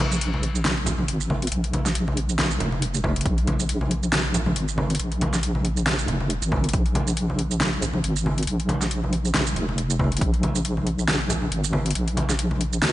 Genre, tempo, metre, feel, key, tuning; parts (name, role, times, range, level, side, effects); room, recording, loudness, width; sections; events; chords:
deep dubstep; 138 BPM; 4/4; swing 56% on 16ths, half-time; A4 = 440 Hz
deep soft wobble bass; bass; 0.0-12.9 s; F1 to Db2; -24 LUFS; equal; chorus
deep house drum kit; drums; 0.0-12.9 s; hi-hat, shaker, snare drum; -26 LUFS; equal; overdrive
congas; percussion; 0.0-12.9 s; -28 LUFS; equal; dub echo
electronic kick drum; drums; 3.0-3.4, 6.5-6.8, 10.0-10.3 s; -24 LUFS; equal; overdrive
light reverb, digital ambience; nothing above 10.3 kHz; -21 LUFS; side -15 dB against mid
0.0-12.9 A section